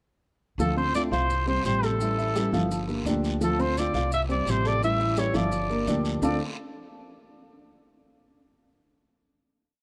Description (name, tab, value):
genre	latin, Cuban son and guajira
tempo	170 BPM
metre	4/4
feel	straight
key	D minor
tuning	A4 = 441 Hz
part	warm trumpet	melody	0.6-6.4 s	A4 to E5	-31 LUFS	equal	none
part	nylon-string guitar	accompaniment	0.6-6.4 s	C3 to G4	-33 LUFS	equal	none
part	dark grand piano	arpeggios	0.6-6.4 s	D3 to F5	-32 LUFS	equal	none
part	upright bass	bass	0.6-6.4 s	G1 to D2	-32 LUFS	equal	none
part	guiro	percussion	0.6-6.3 s	none	-44 LUFS	equal	none
part	maracas	percussion	0.6-6.3 s	none	-48 LUFS	equal	none
room	light reverb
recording	worn, warbling old tape, cassette tape, warbly pitch drift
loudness	-26 LUFS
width	mono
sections	0.6-6.2 montuno (vamp); 6.2-7.6 final chord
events	none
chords	0.6 Dm7; 1.3 Csus4; 2.0 A7; 2.7 Gm7; 3.4 Dm7; 4.1 Csus4; 4.8 A7; 5.5 Gm7; 6.2 Dm7